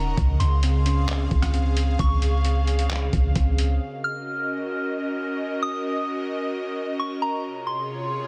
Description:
hip hop, atmospheric cloud-rap; 132 BPM; 4/4; half-time; Eb dorian; A4 = 441 Hz
soft synth bell; melody; 0.0-8.3 s; Bb5 to F6; -33 LUFS; equal; chorus, tape echo
airy breathy pad; sustained chords; 0.0-8.3 s; C3 to Gb5; -32 LUFS; equal; chorus, sidechain pumping
muted felt-like synth keys; arpeggios; 0.0-3.8 s; Db3 to Eb4; -36 LUFS; equal; chorus, tape echo
soft 808-style bass; bass; 0.0-3.8 s; Eb1 to Db2; -24 LUFS; equal
trip hop sampler-style drum kit; drums; 0.2-3.7 s; handclaps, hi-hat, kick drum, rim click; -28 LUFS; equal; overdrive, vintage 12-bit sampler grit
digital ambience; dense, heavily limited modern master; -24 LUFS; mono
0.0-3.8 A section; 3.8-8.3 B section
0.2 Dbmaj7; 3.8 Ebm7; 7.4 Dbmaj7

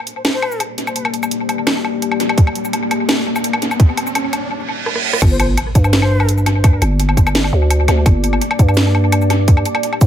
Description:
half-time drum and bass; 169 BPM; 4/4; half-time; G minor; A4 = 440 Hz
deep dark ambient pad; sustained chords; 0.7-10.1 s; Bb3 to D5; -23 LUFS; left 3 dB; chorus, built-in reverb, sidechain pumping
riser, reverse cymbal and impact; sound effects; 2.0-6.6 s; -24 LUFS; right 2 dB
drum and bass drum kit; drums; 0.1-10.1 s; crash cymbal, hi-hat, rim click, shaker, snare drum, woodblock; -19 LUFS; left 1 dB; overdrive, analog delay
breathy mellow silver concert flute; melody; 0.3-0.6, 5.3-6.3 s; C5; -26 LUFS; left 3 dB; analog delay
electronic kick drum; drums; 2.4-10.1 s; -10 LUFS; equal; overdrive
growling 808-style bass; bass; 5.2-10.1 s; G1 to G2; -14 LUFS; equal
digital ambience; echo-heavy mix; -13 LUFS; side -10 dB against mid
0.0-5.2 A section; 5.2-10.1 B section
build-up 0.0-5.2; riser 2.0-4.5; break 4.5-5.2; reverse cymbal 4.5-5.2; drum fill 4.9-5.2; drop 5.2-10.1; impact 5.2-6.6
0.0 Gm

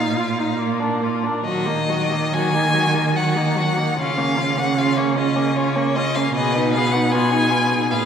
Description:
classical, slow romantic movement for string quartet; 66-80 BPM; 3/4; rubato; Eb minor; A4 = 439 Hz
clear violin; melody; 0.0-8.1 s; Db4 to Cb5; -26 LUFS; left 7 dB
rich violin; second line; 0.0-8.1 s; Db5 to Ab5; -23 LUFS; left 2 dB
clear viola; accompaniment; 0.0-8.1 s; Gb3 to F4; -24 LUFS; equal
clear cello; bass; 0.0-8.1 s; Bb2 to Eb3; -21 LUFS; right 3 dB
wet cathedral reverb, RT60 4.8 s; recorded in a church or concert hall; -17 LUFS; side -8 dB against mid
0.0-8.1 A section
0.0 Bbsus4; 0.6 Bb; 1.5 Ebm; 4.0 Bbm/Db; 6.4 Abm/Cb

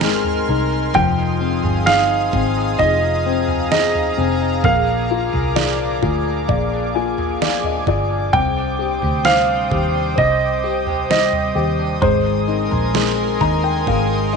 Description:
pop ballad; 65 BPM; 4/4; straight; C minor; A4 = 441 Hz
dark grand piano; melody; 0.0-14.4 s; C5 to G5; -19 LUFS; right 3 dB
dark upright piano; accompaniment; 0.0-14.4 s; F3 to Bb5; -22 LUFS; left 12 dB
airy breathy pad; sustained chords; 0.0-14.4 s; Ab4 to F6; -24 LUFS; equal; chorus
electric guitar at the edge of break-up; arpeggios; 0.0-14.4 s; Bb2 to Bb4; -26 LUFS; right 2 dB
vintage muted fingered electric bass; bass; 0.0-14.4 s; F1 to Eb2; -23 LUFS; right 1 dB
smooth R&B drum kit; drums; 0.0-14.1 s; kick drum, snare drum, toms; -24 LUFS; right 5 dB
light reverb; 1960s-style stereo, nothing above 10.4 kHz; -15 LUFS; side -5 dB against mid
0.0-14.4 A section
upright piano fill 6.5-8.3, 12.9-14.4
0.0 Abadd9; 0.9 Fm7; 4.6 Bb7; 8.3 Cmadd9; 12.0 Abadd9

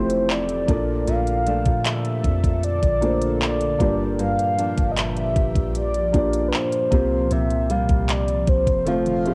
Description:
contemporary R&B; 77 BPM; 4/4; straight; A4 = 440 Hz
mellow horn-like synth lead; melody; 0.0-9.3 s; B4 to F5; -27 LUFS; equal; chorus, cassette tape
felt-muted upright piano; accompaniment; 0.0-9.3 s; F3 to D5; -28 LUFS; equal; cassette tape
ethereal airy pad; sustained chords; 0.2-9.3 s; Bb2 to A4; -34 LUFS; equal; ensemble chorus, built-in reverb, phaser, cassette tape
nylon-string guitar; arpeggios; 0.0-9.3 s; F2 to F4; -31 LUFS; equal; cassette tape, tape echo
soft 808-style bass; bass; 0.0-9.3 s; F1 to Bb2; -28 LUFS; equal
trap drum kit; drums; 0.1-9.3 s; handclaps, hi-hat, kick drum, toms; -26 LUFS; equal; cassette tape
little or no reverb; home recording on cassette; -21 LUFS; mono
0.0-9.3 A section
drum fill 8.9-9.3
0.0 Fmaj7; 0.7 Bbmaj7; 3.8 Gm7; 6.9 C7sus4

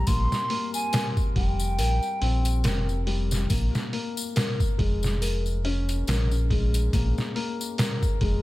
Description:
trip hop; 70 BPM; 4/4; swing 56% on 16ths; Bb dorian; A4 = 439 Hz
mellow hollow jazz flute; melody; 0.0-3.0 s; G5 to C6; -30 LUFS; right 1 dB; tape echo
felt-muted upright piano; arpeggios; 0.0-8.4 s; G3 to Bb4; -32 LUFS; left 4 dB; tape echo
round analog bass; bass; 0.0-8.4 s; F1 to Bb1; -25 LUFS; equal; tube saturation
trip hop sampler-style drum kit; drums; 0.1-8.4 s; hi-hat, kick drum, snare drum; -26 LUFS; equal
tambourine; percussion; 0.1-8.2 s; -37 LUFS; left 5 dB
small room ambience; -23 LUFS; side -17 dB against mid
0.0-8.4 A section
0.0 C5; 3.5 Bbm7

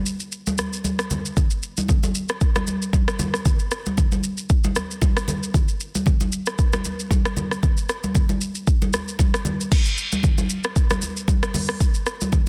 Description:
amapiano; 115 BPM; 4/4; swing 55% on 16ths
deep house drum kit; drums; 0.1-12.5 s; crash cymbal, hi-hat, kick drum, rim click, shaker; -23 LUFS; equal; soft clipping on snare
congas; percussion; 0.5-12.5 s; -28 LUFS; equal
light reverb, digital ambience; dense, heavily limited modern master; -22 LUFS; mono
0.0-9.7 A section; 9.7-12.5 B section
kick muted 0.3-1.4; drop 9.7-12.5

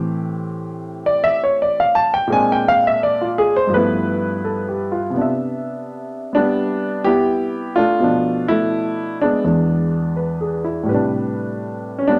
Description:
solo jazz; 84 BPM; 4/4; swing 68% on 8ths; C major from 5.2 s; A4 = 440 Hz
warm concert grand piano; solo; 0.0-12.2 s; E2 to A5; -19 LUFS; equal
moderate large studio reverb, RT60 1.2 s; -19 LUFS; mono
0.0-5.2 A section; 5.2-12.2 B section
grand piano solo 0.0-5.2
0.0 Am7; 2.3 Bb9; 3.7 G13; 5.2 Cmaj9; 8.0 Bm7b5; 9.4 E7; 10.9 Am11

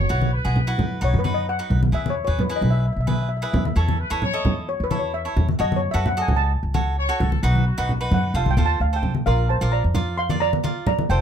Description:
calypso; 131 BPM; 4/4; straight; E major; A4 = 440 Hz
warm horn section; second line; 0.0-0.9, 3.8-8.0 s; F#4 to C#5; -28 LUFS; left 2 dB
upright bass; bass; 0.0-11.2 s; F1 to F#2; -22 LUFS; equal
cavaquinho; accompaniment; 0.1-11.2 s; D#4 to D#5; -28 LUFS; right 3 dB
congas; percussion; 0.2-11.1 s; -24 LUFS; equal
steel pan; melody; 1.0-11.2 s; Bb4 to C6; -25 LUFS; equal
light reverb; close, detailed microphones; -19 LUFS; side -8 dB against mid
0.0-9.3 A section; 9.3-11.2 B section
steel pan solo 0.0-9.3
0.1 Bsus4; 1.0 B; 1.9 E; 3.8 A/E; 5.6 F#m; 7.4 B; 8.3 F7; 9.3 Bbadd9

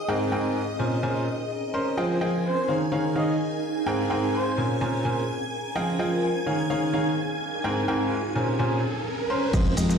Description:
piano house; 127 BPM; 4/4; straight; A4 = 440 Hz
string machine, violins; sustained chords; 0.0-10.0 s; Eb5 to Bb6; -34 LUFS; equal; ensemble chorus, sidechain pumping
granular cloud pad; texture; 0.0-10.0 s; Eb4 to Bb4; -31 LUFS; equal; built-in reverb, sidechain pumping
bright baby grand piano; riff; 0.1-10.0 s; Ab2 to C6; -25 LUFS; equal; sidechain pumping, ping-pong delay
breathy flute-like synth lead; melody; 2.0-4.6, 9.5-9.7 s; C5 to Eb5; -31 LUFS; right 1 dB; lush chorus, ping-pong delay
riser and impact; sound effects; 6.4-10.0 s; -33 LUFS; right 1 dB
fingered electric bass; bass; 9.5-10.0 s; F2; -24 LUFS; left 1 dB; sidechain pumping
breakbeat sampler-style drum kit; drums; 9.5-10.0 s; hi-hat, snare drum; -42 LUFS; left 1 dB; high-pass filter on hats, high-pass filter on snare, high-pass filter on room
electronic kick drum; drums; 9.5-9.6 s; -23 LUFS; equal
punchy analog drum machine; drums; 9.5-10.0 s; cabasa, crash cymbal, hi-hat; -34 LUFS; left 2 dB; low-pass filter on cymbals, low-pass filter on perc, low-pass filter on hats, low-pass filter on room
moderate plate reverb, RT60 1.4 s; played on a big sound system in a bare room, large studio reverb; -23 LUFS; side -6 dB against mid
0.0-9.5 A section
riser 6.4-9.5; impact 9.5-10.0
0.0 Abmaj9; 0.8 Bbm9; 2.0 Fm9; 2.7 Eb9sus4; 3.6 Abmaj9; 4.6 Bbm9; 5.8 Fm9; 6.5 Eb9sus4; 7.4 Abmaj9; 8.4 Bbm9

